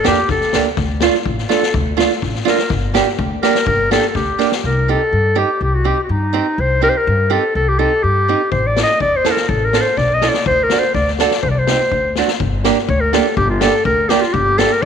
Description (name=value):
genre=klezmer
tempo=124 BPM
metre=2/4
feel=straight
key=G minor, C dorian sharp4 from 4.6 s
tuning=A4 = 438 Hz
part: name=warm clarinet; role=melody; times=0.0-14.9 s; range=Eb4 to Eb5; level=-16 LUFS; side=left 1 dB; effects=none
part: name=nylon-string guitar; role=accompaniment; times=0.0-14.7 s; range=A3 to A4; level=-19 LUFS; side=right 10 dB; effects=none
part: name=street-band drum kit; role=drums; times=0.0-4.6, 8.5-14.9 s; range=kick drum, snare drum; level=-21 LUFS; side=left 8 dB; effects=none
part: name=upright bass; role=bass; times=0.1-14.9 s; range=G1 to G2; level=-20 LUFS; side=left 1 dB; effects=none
room=moderate echo chamber reverb, RT60 2.4 s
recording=1960s-style stereo with parts hard left and right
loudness=-13 LUFS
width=side -7 dB against mid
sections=0.0-4.6 A section; 4.6-12.4 B section; 12.4-14.9 C section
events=drum fill 4.4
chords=0.0 Gm; 0.8 Dm; 2.7 Gm; 4.6 Cm; 8.5 A; 10.5 D; 11.4 Cm; 11.9 D7; 12.4 Gm